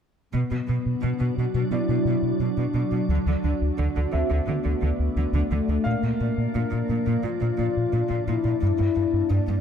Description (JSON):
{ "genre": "cinematic", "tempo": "87 BPM", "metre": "4/4", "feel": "straight", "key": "unclear", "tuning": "A4 = 440 Hz", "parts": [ { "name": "dark French horn section", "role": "sustained chords", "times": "0.3-9.6 s", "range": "A3 to F#4", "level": "-28 LUFS", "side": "left 5 dB", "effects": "none" }, { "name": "glassy FM pad", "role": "sustained chords", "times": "0.9-9.6 s", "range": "E#3 to D5", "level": "-29 LUFS", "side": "right 2 dB", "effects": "ensemble chorus, built-in reverb, phaser" }, { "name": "round analog bass", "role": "riff", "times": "0.3-9.6 s", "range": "D2 to B3", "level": "-25 LUFS", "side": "equal", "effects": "none" }, { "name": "clear chamber cello section", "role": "bass", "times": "0.3-9.6 s", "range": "G2 to D3", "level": "-31 LUFS", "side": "right 5 dB", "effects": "none" }, { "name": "bright grand piano", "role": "texture", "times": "1.7-8.6 s", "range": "D5 to E#5", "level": "-38 LUFS", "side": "equal", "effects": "ping-pong delay" } ], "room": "moderate scoring stage reverb, RT60 2.1 s", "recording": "none", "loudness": "-22 LUFS", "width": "side -8 dB against mid", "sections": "0.3-9.6 A section", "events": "none", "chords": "0.3 Bm; 3.1 D; 5.9 A#; 8.6 Gm" }